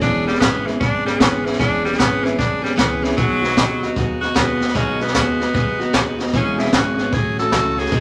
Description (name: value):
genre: rockabilly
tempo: 152 BPM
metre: 4/4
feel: swing 65% on 8ths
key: E major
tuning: A4 = 441 Hz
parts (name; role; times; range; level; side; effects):
- raspy tenor saxophone; melody; 0.0-8.0 s; E3 to A4; -24 LUFS; equal; none
- picked steel-string acoustic guitar; accompaniment; 0.0-8.0 s; A2 to G#4; -24 LUFS; equal; none
- upright bass; bass; 0.0-8.0 s; E1 to D#2; -31 LUFS; equal; none
- jazz brush drum kit; drums; 0.0-8.0 s; hi-hat, kick drum, snare drum; -22 LUFS; equal; none
room: moderate studio reverb, RT60 0.8 s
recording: none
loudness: -18 LUFS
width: mono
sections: 0.0-8.0 A section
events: none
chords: 0.0 E6; 3.2 B6; 6.3 E6; 7.1 A6